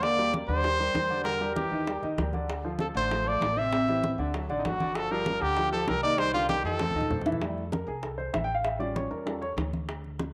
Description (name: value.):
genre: Afro-Cuban jazz.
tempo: 195 BPM.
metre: 4/4.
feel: straight.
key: unclear.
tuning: A4 = 440 Hz.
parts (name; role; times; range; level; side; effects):
clear trumpet; melody; 0.0-7.2 s; Eb4 to E5; -30 LUFS; equal; tape echo.
dark trombone; second line; 0.0-7.2 s; C3 to C4; -38 LUFS; equal; none.
warm baby grand piano; accompaniment; 0.0-9.5 s; C3 to G5; -35 LUFS; equal; none.
upright bass; bass; 0.0-10.3 s; G1 to F2; -38 LUFS; equal; none.
bongos; percussion; 0.0-10.3 s; none; -40 LUFS; equal; none.
congas; percussion; 0.0-10.3 s; none; -39 LUFS; equal; none.
room: wet spring reverb, RT60 1.2 s.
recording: none.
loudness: -29 LUFS.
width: mono.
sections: 0.0-7.4 A section; 7.4-10.3 B section.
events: drum fill 6.8-7.4; grand piano solo 7.4-10.3.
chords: 0.0 Ebmaj7; 1.9 Eb; 2.5 Dm7; 3.7 Am7; 4.3 D; 5.0 Gm7; 6.2 Cm7; 6.8 F7; 7.4 Fmaj9; 8.7 A7b13.